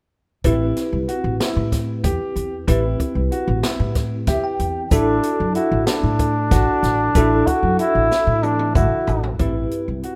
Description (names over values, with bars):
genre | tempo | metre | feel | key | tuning
progressive instrumental, band music in an uneven meter | 188 BPM (eighths) | 7/8 | straight | A dorian | A4 = 440 Hz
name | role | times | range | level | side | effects
bell-like tine electric piano | accompaniment | 0.4-10.2 s | C4 to G5 | -27 LUFS | equal | ensemble chorus
warm concert grand piano | arpeggios | 0.4-10.2 s | E4 to G4 | -29 LUFS | equal | none
upright bass | bass | 0.4-10.0 s | A1 to A2 | -24 LUFS | equal | none
open jazz drum kit | drums | 0.4-10.2 s | hi-hat, kick drum, snare drum, toms | -25 LUFS | equal | none
mellow flugelhorn | second line | 4.9-9.4 s | D4 to F#4 | -22 LUFS | equal | none
tube shaker | percussion | 4.9-9.2 s | none | -41 LUFS | equal | none
room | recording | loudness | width
light reverb, studio reverb | rough home demo mix | -19 LUFS | mono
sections
0.4-9.4 A section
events
tine electric piano fill 4.0-4.9; drum fill 8.1-9.4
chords
0.4 Am7; 4.9 Dadd9/A; 9.4 Am7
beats
| 0.44 0.76 1.08 1.40 1.72 2.04 2.36 | 2.68 3.00 3.32 3.64 3.96 4.28 4.59 | 4.92 5.23 5.55 5.87 6.19 6.51 6.83 | 7.15 7.47 7.79 8.11 8.43 8.75 9.07 | 9.39 9.72 10.04